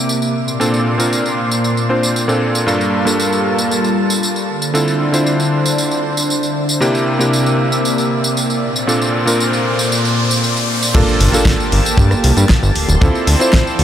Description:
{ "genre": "nu-disco, nu disco", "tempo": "116 BPM", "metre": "4/4", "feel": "straight", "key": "G dorian", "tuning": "A4 = 439 Hz", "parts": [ { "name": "bright electric grand piano", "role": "accompaniment", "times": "0.0-13.8 s", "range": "G2 to C5", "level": "-18 LUFS", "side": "equal", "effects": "diffuse ambient delay" }, { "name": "lush unison pad", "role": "sustained chords", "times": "0.0-13.8 s", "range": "Bb2 to D6", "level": "-18 LUFS", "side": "equal", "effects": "chorus, sidechain pumping" }, { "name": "pop drum kit", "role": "drums", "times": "0.1-13.8 s", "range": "crash cymbal, hi-hat, rim click, snare drum, tambourine", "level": "-21 LUFS", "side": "right 1 dB", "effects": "small room ambience" }, { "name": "riser and impact", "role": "sound effects", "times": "8.2-13.0 s", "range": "none", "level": "-23 LUFS", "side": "equal", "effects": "none" }, { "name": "fat analog bass", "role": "bass", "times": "10.9-13.8 s", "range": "D1 to G2", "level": "-13 LUFS", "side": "equal", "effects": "tube saturation" }, { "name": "kick drum", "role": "drums", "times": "10.9-13.6 s", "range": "none", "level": "-13 LUFS", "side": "equal", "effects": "small room ambience" } ], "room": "moderate huge ambient reverb, RT60 7.9 s", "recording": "dreamy mix soaked in reverb", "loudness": "-13 LUFS", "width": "side -10 dB against mid", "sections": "0.0-10.9 A section; 10.9-13.8 B section", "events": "filter sweep on analog synth pad 0.0-10.9; riser 8.2-10.9; drop 10.9-13.8; impact 10.9-13.0", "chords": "0.3 Bbmaj9; 2.7 Gm9; 4.5 Dm7; 6.8 C9; 8.6 Bbmaj9; 10.9 Gm9; 12.8 Dm7", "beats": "0.08 | 0.60 1.12 1.64 2.15 | 2.67 3.19 3.70 4.22 | 4.74 5.26 5.77 6.29 | 6.81 7.33 7.84 8.36 | 8.88 9.39 9.91 10.43 | 10.95 11.46 11.98 12.50 | 13.02 13.53" }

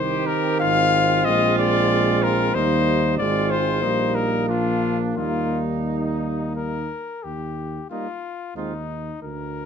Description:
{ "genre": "classical, brass quintet", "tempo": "84-94 BPM", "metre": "3/4", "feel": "rubato", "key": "Eb major", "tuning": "A4 = 440 Hz", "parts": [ { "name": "warm cornet", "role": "melody", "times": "0.0-9.7 s", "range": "Eb4 to F5", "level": "-24 LUFS", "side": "left 7 dB", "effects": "none" }, { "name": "clear trumpet", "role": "second line", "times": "0.0-8.7 s", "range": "D4 to G4", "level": "-27 LUFS", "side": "right 11 dB", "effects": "none" }, { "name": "mellow French horn", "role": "accompaniment", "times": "0.0-8.7 s", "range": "Bb3 to C4", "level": "-27 LUFS", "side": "left 3 dB", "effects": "none" }, { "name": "warm trombone", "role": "accompaniment", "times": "0.0-8.7 s", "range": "Eb3 to Ab3", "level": "-27 LUFS", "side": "right 6 dB", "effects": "none" }, { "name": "warm tuba", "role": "bass", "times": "0.0-9.7 s", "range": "Ab1 to Eb2", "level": "-26 LUFS", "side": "right 3 dB", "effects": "none" } ], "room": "moderate large studio reverb, RT60 0.8 s", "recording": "none", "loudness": "-19 LUFS", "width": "side -7 dB against mid", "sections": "0.0-7.2 A section; 7.2-9.7 B section", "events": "none", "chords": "0.0 Cm; 0.6 Fm7/Ab; 1.3 Bb9; 2.5 Eb; 3.2 Fm/Ab; 3.8 Eb/Bb; 4.5 Bb; 5.2 Eb; 8.6 Fm7/Eb", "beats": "0.61 | 1.27 1.91 2.54 | 3.18 3.83 4.49 | 5.17 5.86 6.56 | 7.25 7.91 8.56 | 9.23" }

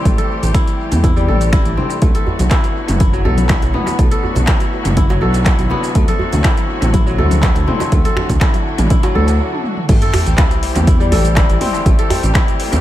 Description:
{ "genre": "afro house", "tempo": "122 BPM", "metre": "4/4", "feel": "straight", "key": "A dorian", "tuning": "A4 = 440 Hz", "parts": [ { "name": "bright symphonic string section", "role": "sustained chords", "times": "0.0-12.8 s", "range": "D3 to G4", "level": "-25 LUFS", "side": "equal", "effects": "sidechain pumping" }, { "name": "kora", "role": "arpeggios", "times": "0.0-12.8 s", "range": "F#3 to A4", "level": "-21 LUFS", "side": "left 2 dB", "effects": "sidechain pumping, analog delay" }, { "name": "smooth gliding synth bass", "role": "bass", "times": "0.1-12.8 s", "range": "F#1 to E2", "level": "-16 LUFS", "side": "equal", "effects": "sidechain pumping" }, { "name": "deep house drum kit", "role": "drums", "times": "0.1-12.8 s", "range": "crash cymbal, finger snaps, handclaps, hi-hat, shaker, toms", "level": "-23 LUFS", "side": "equal", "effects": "overdrive, small room reverb, analog delay" }, { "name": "electronic kick drum", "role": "drums", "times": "0.1-12.5 s", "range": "none", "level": "-14 LUFS", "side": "equal", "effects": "overdrive, small room reverb" }, { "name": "congas", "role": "percussion", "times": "0.1-9.3 s", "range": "none", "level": "-24 LUFS", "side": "left 2 dB", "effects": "none" }, { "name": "djembe", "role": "percussion", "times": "2.0-12.8 s", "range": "none", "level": "-25 LUFS", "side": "right 3 dB", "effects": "none" }, { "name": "sub drop", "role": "sound effects", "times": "9.9-11.9 s", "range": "none", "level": "-22 LUFS", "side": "equal", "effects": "none" } ], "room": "light reverb, small room ambience", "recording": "echo-heavy mix", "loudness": "-12 LUFS", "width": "side -13 dB against mid", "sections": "0.0-9.9 A section; 9.9-12.8 B section", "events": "break 9.4-9.9; drum fill 9.5-9.9; drop 9.9-12.8; impact 9.9-11.9", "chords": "0.0 Am7; 2.0 Bm7; 6.0 D7; 9.9 Am7", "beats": "| 0.06 0.55 1.04 1.53 | 2.02 2.52 3.01 3.50 | 3.99 4.48 4.97 5.47 | 5.96 6.45 6.94 7.43 | 7.92 8.42 8.91 9.40 | 9.89 10.38 10.88 11.37 | 11.86 12.35" }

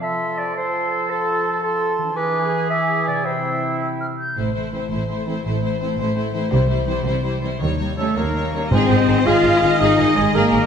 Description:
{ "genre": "cinematic, heroic adventure film score", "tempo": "111 BPM (dotted quarters)", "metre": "6/8", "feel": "straight", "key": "unclear", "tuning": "A4 = 436 Hz", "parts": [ { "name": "dark cor anglais", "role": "second line", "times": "0.0-4.2, 8.0-10.7 s", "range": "Ab4 to A5", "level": "-27 LUFS", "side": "right 4 dB", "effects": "none" }, { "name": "mellow clarinet", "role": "second line", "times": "0.0-3.8, 8.7-10.7 s", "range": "A4 to E5", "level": "-24 LUFS", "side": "equal", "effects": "none" }, { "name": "mellow silver concert flute", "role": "second line", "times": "0.0-4.4, 8.7-10.7 s", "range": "Ab5 to G6", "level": "-29 LUFS", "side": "equal", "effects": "none" }, { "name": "warm French horn section", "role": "sustained chords", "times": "0.0-4.2, 8.0-10.7 s", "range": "C3 to F4", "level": "-23 LUFS", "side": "left 5 dB", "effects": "none" }, { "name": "concert harp", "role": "arpeggios", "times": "0.0-10.7 s", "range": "Ab2 to A4", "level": "-29 LUFS", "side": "left 8 dB", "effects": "none" }, { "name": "bright trumpet section", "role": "stabs", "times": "0.0-4.2, 8.0-10.7 s", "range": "E4 to F5", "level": "-25 LUFS", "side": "right 3 dB", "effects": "none" }, { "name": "clear symphonic violin section", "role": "melody", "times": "4.4-10.7 s", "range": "C5 to Eb5", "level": "-26 LUFS", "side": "left 4 dB", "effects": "none" }, { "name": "rich studio violin section", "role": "second line", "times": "4.4-10.6 s", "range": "Eb4 to Ab4", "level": "-30 LUFS", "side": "equal", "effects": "none" }, { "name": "rich symphonic viola section", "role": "accompaniment", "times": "4.4-10.6 s", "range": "G3 to Ab4", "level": "-28 LUFS", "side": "right 2 dB", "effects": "none" }, { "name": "rich symphonic cello section", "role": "bass", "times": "4.4-10.7 s", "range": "A2 to F4", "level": "-25 LUFS", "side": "right 2 dB", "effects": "none" }, { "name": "rich symphonic double bass section", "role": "bass", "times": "4.4-10.6 s", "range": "Ab1 to Eb2", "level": "-24 LUFS", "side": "right 3 dB", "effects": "none" }, { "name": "clear trombone section", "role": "sustained chords", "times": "4.7-10.7 s", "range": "Eb3 to Db4", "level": "-32 LUFS", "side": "right 2 dB", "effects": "none" }, { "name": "timpani", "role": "percussion", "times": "8.7-9.2 s", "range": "Ab2", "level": "-23 LUFS", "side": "right 2 dB", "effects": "none" } ], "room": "wet scoring stage reverb, RT60 1.7 s", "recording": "none", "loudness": "-17 LUFS", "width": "side -7 dB against mid", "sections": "0.0-4.4 A section; 4.4-8.7 B section; 8.7-10.7 C section", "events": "none", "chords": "0.0 F; 2.2 E7; 3.2 C; 4.4 Am; 6.5 C; 7.6 Eb7; 8.7 Ab", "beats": "| 0.02 0.56 | 1.10 1.63 | 2.16 2.70 | 3.25 3.81 | 4.37 4.91 | 5.45 5.98 | 6.51 7.05 | 7.61 8.17 | 8.72 9.27 | 9.81 10.35" }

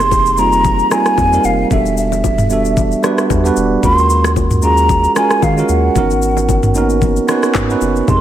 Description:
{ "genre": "amapiano", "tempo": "113 BPM", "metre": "4/4", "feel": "swing 55% on 16ths", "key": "unclear", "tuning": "A4 = 441 Hz", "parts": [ { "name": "mellow hollow concert flute", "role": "melody", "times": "0.0-8.2 s", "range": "E5 to C6", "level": "-15 LUFS", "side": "equal", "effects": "ping-pong delay" }, { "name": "bell-like tine electric piano", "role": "accompaniment", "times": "0.0-8.2 s", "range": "G3 to B4", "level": "-16 LUFS", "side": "right 4 dB", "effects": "none" }, { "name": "round analog bass", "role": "bass", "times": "0.0-8.0 s", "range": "E1 to Eb3", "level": "-18 LUFS", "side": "left 1 dB", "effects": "none" }, { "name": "smooth R&B drum kit", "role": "drums", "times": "0.0-8.2 s", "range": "handclaps, kick drum, rim click, shaker, toms", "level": "-18 LUFS", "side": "equal", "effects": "none" }, { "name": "bongos and congas", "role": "percussion", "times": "0.0-8.2 s", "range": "none", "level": "-26 LUFS", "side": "left 12 dB", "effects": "none" }, { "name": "woody log drum bass", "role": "bass", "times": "8.1-8.2 s", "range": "F1", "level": "-14 LUFS", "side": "equal", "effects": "none" } ], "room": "moderate plate reverb, RT60 1.9 s, digital ambience", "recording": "dreamy mix soaked in reverb", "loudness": "-11 LUFS", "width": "side -11 dB against mid", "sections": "0.0-8.2 A section", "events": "none", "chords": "0.0 Fm11; 1.7 Em11; 3.8 Ebm11; 6.0 Abm11", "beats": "0.12 0.65 1.18 | 1.71 2.24 2.77 3.30 | 3.83 4.36 4.89 5.42 | 5.96 6.49 7.02 7.55 | 8.08" }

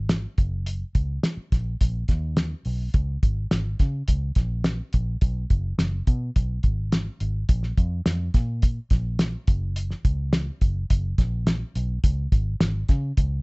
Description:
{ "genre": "uptempo 1960s-style soul", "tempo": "106 BPM", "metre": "4/4", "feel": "straight", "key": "F# major", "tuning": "A4 = 440 Hz", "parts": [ { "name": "vintage muted fingered electric bass", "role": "bass", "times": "0.0-13.4 s", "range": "F#1 to C#3", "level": "-26 LUFS", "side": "equal", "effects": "none" }, { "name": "cloth-damped thuddy drum kit", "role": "drums", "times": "0.1-13.3 s", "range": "hi-hat, kick drum, snare drum", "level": "-21 LUFS", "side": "equal", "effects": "none" } ], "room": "little or no reverb", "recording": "nothing above 8.0 kHz", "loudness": "-22 LUFS", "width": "side -35 dB against mid", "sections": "0.0-13.4 A section", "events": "none", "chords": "none", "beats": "0.10 | 0.67 1.24 1.81 2.38 | 2.94 3.51 4.08 4.65 | 5.22 5.79 6.35 6.92 | 7.49 8.06 8.63 9.20 | 9.77 10.33 10.90 11.47 | 12.04 12.61 13.18" }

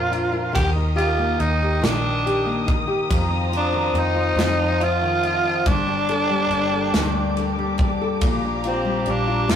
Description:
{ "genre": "six-eight pop ballad", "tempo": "47 BPM (dotted quarters)", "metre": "6/8", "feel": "straight", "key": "Bb major", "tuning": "A4 = 440 Hz", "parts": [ { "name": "raspy tenor saxophone", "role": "melody", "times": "0.0-9.6 s", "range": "C4 to G4", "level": "-23 LUFS", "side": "right 2 dB", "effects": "none" }, { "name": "nylon-string guitar", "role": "accompaniment", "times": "0.0-9.6 s", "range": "F2 to A4", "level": "-25 LUFS", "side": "left 3 dB", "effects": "none" }, { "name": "muted studio string section", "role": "sustained chords", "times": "0.0-9.6 s", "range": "Bb3 to Eb6", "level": "-27 LUFS", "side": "left 1 dB", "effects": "none" }, { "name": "vintage muted fingered electric bass", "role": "bass", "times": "0.0-9.6 s", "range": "G1 to F2", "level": "-26 LUFS", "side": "equal", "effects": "none" }, { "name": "modern studio drum kit", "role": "drums", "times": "0.1-9.6 s", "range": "kick drum, ride cymbal, snare drum", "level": "-25 LUFS", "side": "equal", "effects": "none" } ], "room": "wet studio reverb, RT60 0.6 s", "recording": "rough rehearsal-room recording", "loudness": "-18 LUFS", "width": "side -8 dB against mid", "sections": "0.0-9.6 A section", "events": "none", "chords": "0.0 Bbadd9; 0.5 Eb; 3.1 F7sus4; 4.4 F7; 5.7 Gmadd9; 8.2 Bb6", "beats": "| 0.55 1.83 | 3.11 4.39 | 5.67 6.94 | 8.22 9.50" }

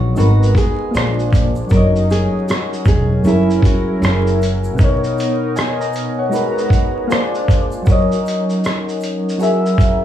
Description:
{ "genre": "lo-fi hip hop", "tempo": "78 BPM", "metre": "4/4", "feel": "swing 64% on 16ths", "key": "unclear", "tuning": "A4 = 441 Hz", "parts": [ { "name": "nylon-string guitar", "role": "melody", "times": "0.0-4.4 s", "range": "E4 to A#4", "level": "-23 LUFS", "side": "right 2 dB", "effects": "analog delay" }, { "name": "soft electric-piano-like synth keys", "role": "accompaniment", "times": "0.0-10.0 s", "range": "B2 to A#5", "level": "-18 LUFS", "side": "left 1 dB", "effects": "chorus, phaser, cassette tape" }, { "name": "warm analog pad", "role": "sustained chords", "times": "0.0-10.0 s", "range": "F#3 to A#5", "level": "-25 LUFS", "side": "equal", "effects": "chorus" }, { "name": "upright bass", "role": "bass", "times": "0.0-4.7 s", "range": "E1 to A#1", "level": "-16 LUFS", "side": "equal", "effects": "none" }, { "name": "dusty soul sampler-style drum kit", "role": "drums", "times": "0.2-10.0 s", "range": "hi-hat, kick drum, rim click, shaker", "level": "-16 LUFS", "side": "equal", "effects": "vintage 12-bit sampler grit" }, { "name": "egg shaker", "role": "percussion", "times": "0.2-10.0 s", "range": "none", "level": "-46 LUFS", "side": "right 4 dB", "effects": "none" } ], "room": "moderate studio reverb, RT60 0.6 s", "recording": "vinyl crackle, studio reverb", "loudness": "-13 LUFS", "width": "side -11 dB against mid", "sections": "0.0-10.0 A section", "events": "none", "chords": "0.2 G#m9; 0.9 A#7; 1.7 D#m7/F#; 3.3 F#7; 4.8 Bmaj7; 6.3 G#m9; 7.1 A#7; 7.9 D#m7/F#; 9.4 F#7", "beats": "0.17 0.94 | 1.71 2.48 3.25 4.02 | 4.79 5.56 6.33 7.10 | 7.87 8.63 9.40" }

